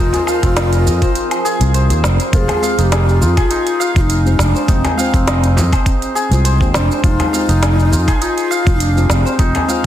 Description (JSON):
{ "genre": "organic downtempo", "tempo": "102 BPM", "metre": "4/4", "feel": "swing 54% on 16ths", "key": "F minor", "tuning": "A4 = 441 Hz", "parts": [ { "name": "breathy mellow low ney", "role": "melody", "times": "0.0-9.9 s", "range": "C4 to Bb4", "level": "-20 LUFS", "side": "left 1 dB", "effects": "digital delay" }, { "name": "ethereal airy pad", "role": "sustained chords", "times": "0.0-2.4 s", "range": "F3 to F5", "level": "-27 LUFS", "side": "right 4 dB", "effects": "ensemble chorus, built-in reverb, sidechain pumping" }, { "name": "santur", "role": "arpeggios", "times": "0.0-9.9 s", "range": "C4 to F5", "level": "-20 LUFS", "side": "left 1 dB", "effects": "digital delay" }, { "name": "sustaining fretless electric bass", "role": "bass", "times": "0.0-9.5 s", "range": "F1 to F2", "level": "-14 LUFS", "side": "equal", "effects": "sidechain pumping" }, { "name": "organic electronic drum kit", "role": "drums", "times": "0.1-9.8 s", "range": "hi-hat, shaker, snare drum, woodblock", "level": "-21 LUFS", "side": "right 1 dB", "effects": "none" }, { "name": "frame drum", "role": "percussion", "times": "0.1-9.7 s", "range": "none", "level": "-23 LUFS", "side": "left 1 dB", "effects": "none" }, { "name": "electronic kick drum", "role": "drums", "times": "0.4-9.5 s", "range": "none", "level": "-15 LUFS", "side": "equal", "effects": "overdrive" }, { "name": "deep mellow chord stab", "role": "accompaniment", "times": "2.3-9.9 s", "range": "Ab3 to G5", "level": "-25 LUFS", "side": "left 2 dB", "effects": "chorus, cassette tape, sidechain pumping" } ], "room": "light reverb", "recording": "dense, heavily limited modern master", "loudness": "-12 LUFS", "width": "side -11 dB against mid", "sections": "0.0-2.3 A section; 2.3-9.9 B section", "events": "kick drops out 1.2-2.3", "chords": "0.0 Fm; 2.3 Fmadd9" }